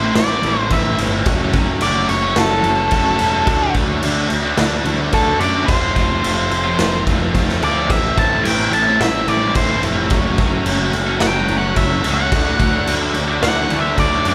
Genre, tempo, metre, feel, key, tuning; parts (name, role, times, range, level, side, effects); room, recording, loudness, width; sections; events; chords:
quiet-loud alternative rock; 108 BPM; 4/4; straight; A4 = 439 Hz
octave-fuzz lead guitar; melody; 0.0-14.3 s; A4 to A5; -21 LUFS; equal; distortion
cranked stack guitar; riff; 0.0-14.3 s; A2 to F#4; -26 LUFS; equal; overdrive
thick fuzz guitar; riff; 0.0-14.3 s; A2 to F#4; -26 LUFS; equal; distortion
fuzz picked electric bass; bass; 0.0-14.3 s; E1 to F#2; -25 LUFS; equal; overdrive
raw garage drum kit; drums; 0.2-14.3 s; crash cymbal, kick drum, snare drum; -21 LUFS; equal
mellow tonewheel organ; sustained chords; 7.9-14.3 s; F#3 to A5; -36 LUFS; equal
light reverb; band playing live in one room; -17 LUFS; mono
0.0-14.3 A section
lead electric guitar solo 0.0-14.3
0.0 Am; 1.3 F#m; 3.5 D; 5.7 F; 7.9 Am; 10.1 F#m; 12.3 D